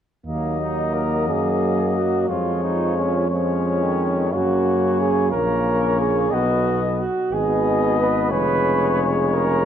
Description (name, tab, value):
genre	classical, brass quintet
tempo	60 BPM (dotted quarters)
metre	6/8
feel	straight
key	Eb minor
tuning	A4 = 440 Hz
part	warm trumpet	melody	0.3-9.7 s	Db5 to Eb5	-25 LUFS	left 8 dB	none
part	warm flugelhorn	second line	0.3-9.7 s	Bb3 to B4	-23 LUFS	right 4 dB	none
part	clear French horn	accompaniment	0.3-9.7 s	Ab3 to Cb4	-26 LUFS	left 4 dB	none
part	clear euphonium	accompaniment	0.3-9.7 s	B2 to Gb3	-28 LUFS	right 2 dB	none
part	warm bass trombone	bass	0.3-9.7 s	E#1 to Gb2	-23 LUFS	right 1 dB	none
room	moderate concert hall reverb, RT60 2.2 s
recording	dark, warm production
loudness	-18 LUFS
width	side -9 dB against mid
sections	0.3-9.7 A section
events	none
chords	0.3 Ebm; 2.3 Db/F; 4.3 Gb; 6.3 B; 7.3 Abm; 8.3 C#7/E#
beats	| 0.27 1.28 | 2.29 3.30 | 4.33 5.33 | 6.33 7.33 | 8.32 9.31